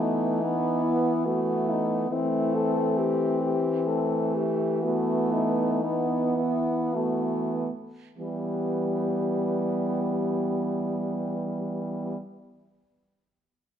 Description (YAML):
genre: classical, lyrical piece for horn quartet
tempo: 46-73 BPM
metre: 3/4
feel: rubato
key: E minor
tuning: A4 = 440 Hz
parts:
  - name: warm French horn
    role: melody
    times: 0.0-12.2 s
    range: D#4 to A4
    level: -30 LUFS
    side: left 8 dB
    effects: none
  - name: warm French horn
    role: second line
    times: 0.0-12.2 s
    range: A3 to B3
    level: -30 LUFS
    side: right 7 dB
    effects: none
  - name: warm French horn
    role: accompaniment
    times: 0.0-12.2 s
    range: G3 to C4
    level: -30 LUFS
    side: left 2 dB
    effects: none
  - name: warm French horn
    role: bass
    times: 0.0-12.2 s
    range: E3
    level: -31 LUFS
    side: right 2 dB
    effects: none
room: moderate recital hall reverb, RT60 1.5 s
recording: none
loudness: -24 LUFS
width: side -9 dB against mid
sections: 0.0-8.2 A section; 8.2-11.8 B section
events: slowing down 0.8-8.2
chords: 0.0 B7/E; 2.1 Am/E; 4.8 B7/E; 8.2 Em